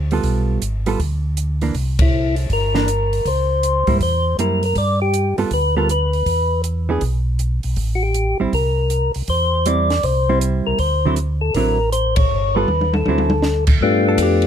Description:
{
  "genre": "soul jazz organ trio",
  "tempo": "159 BPM",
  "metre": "4/4",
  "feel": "swing 65% on 8ths",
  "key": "G mixolydian",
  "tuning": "A4 = 440 Hz",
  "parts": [
    { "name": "mellow tonewheel organ", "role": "bass", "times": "0.0-14.5 s", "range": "G1 to Ab2", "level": "-20 LUFS", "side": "equal", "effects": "slow rotary speaker" },
    { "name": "hollow-body jazz guitar", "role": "accompaniment", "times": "0.1-14.4 s", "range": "D3 to A4", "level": "-21 LUFS", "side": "right 5 dB", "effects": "none" },
    { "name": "compact cocktail drum kit", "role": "drums", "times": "0.1-14.5 s", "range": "crash cymbal, hi-hat, kick drum, ride cymbal, snare drum, toms", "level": "-22 LUFS", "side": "equal", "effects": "none" },
    { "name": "percussive tonewheel organ", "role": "melody", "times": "2.0-14.5 s", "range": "A3 to D5", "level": "-19 LUFS", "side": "left 2 dB", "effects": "slow rotary speaker, plate reverb" }
  ],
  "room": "light reverb",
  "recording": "close, detailed microphones",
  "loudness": "-16 LUFS",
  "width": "side -9 dB against mid",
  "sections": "0.0-13.8 A section",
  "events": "band accent 1.9, 12.1; drum fill 12.7-13.4",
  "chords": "0.0 G9; 1.8 C7; 3.3 C#dim7; 4.8 G9; 6.3 E5; 7.8 Am7; 10.8 D9; 12.3 G9; 13.1 D9; 13.8 G9"
}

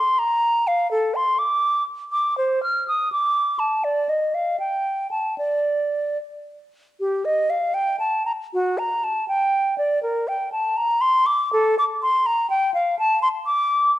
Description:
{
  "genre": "classical, baroque-style fantasia for unaccompanied flute",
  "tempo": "73-85 BPM (dotted quarters)",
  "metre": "6/8",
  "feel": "rubato",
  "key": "G minor",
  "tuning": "A4 = 438 Hz",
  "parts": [
    { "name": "concert flute", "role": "solo", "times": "0.0-13.9 s", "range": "F#4 to F6", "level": "-19 LUFS", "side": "equal", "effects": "none" }
  ],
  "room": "moderate recital hall reverb, RT60 1.4 s",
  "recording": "dark, warm production",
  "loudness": "-19 LUFS",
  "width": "side -14 dB against mid",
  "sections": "0.0-7.0 A section; 7.0-14.0 A section",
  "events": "none",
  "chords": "none"
}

